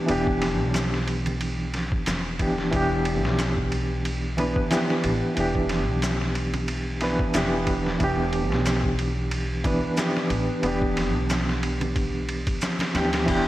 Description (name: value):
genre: trip hop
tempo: 91 BPM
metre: 4/4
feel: swing 55% on 16ths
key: E minor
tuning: A4 = 442 Hz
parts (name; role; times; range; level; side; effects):
- mellow reed electric piano; accompaniment; 0.0-13.5 s; E3 to B4; -25 LUFS; equal; fast tremolo, harmonic tremolo, tape echo
- upright bass; bass; 0.1-13.5 s; E1 to D2; -28 LUFS; equal; tube saturation
- trip hop sampler-style drum kit; drums; 0.1-13.5 s; crash cymbal, kick drum, ride cymbal, snare drum; -28 LUFS; equal; vintage 12-bit sampler grit, small room ambience
- maracas and congas; percussion; 0.8-12.9 s; none; -38 LUFS; right 1 dB; none
room: wet lush hall reverb, RT60 2.6 s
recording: dreamy mix soaked in reverb, vinyl crackle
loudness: -22 LUFS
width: side -15 dB against mid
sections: 0.0-13.3 A section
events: none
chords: 0.0 Em7